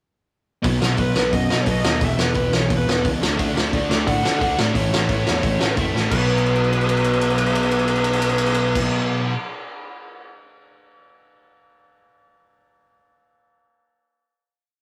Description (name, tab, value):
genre	punk rock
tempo	176 BPM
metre	4/4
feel	straight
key	unclear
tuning	A4 = 438 Hz
part	crunchy overdriven guitar	riff	0.6-9.3 s	E2 to D4	-29 LUFS	equal	none
part	sludgy distorted guitar	riff	0.6-9.3 s	E2 to D4	-27 LUFS	equal	overdrive
part	picked electric bass	bass	0.6-8.8 s	E1 to D3	-27 LUFS	equal	none
part	loose indie drum kit	drums	0.6-10.3 s	crash cymbal, hi-hat, kick drum, ride cymbal, snare drum	-25 LUFS	equal	none
part	bluesy overdriven lead guitar	melody	1.0-8.8 s	B4 to F#5	-26 LUFS	equal	distortion
part	high-gain distorted guitar	riff	3.4-9.3 s	A2 to D4	-31 LUFS	equal	none
room	light reverb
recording	rough rehearsal-room recording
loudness	-20 LUFS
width	mono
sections	0.6-6.1 verse; 6.1-8.8 final chord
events	drum fill 5.9, 6.3-8.7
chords	0.6 B; 2.0 E5; 3.2 D; 4.7 A; 6.1 B5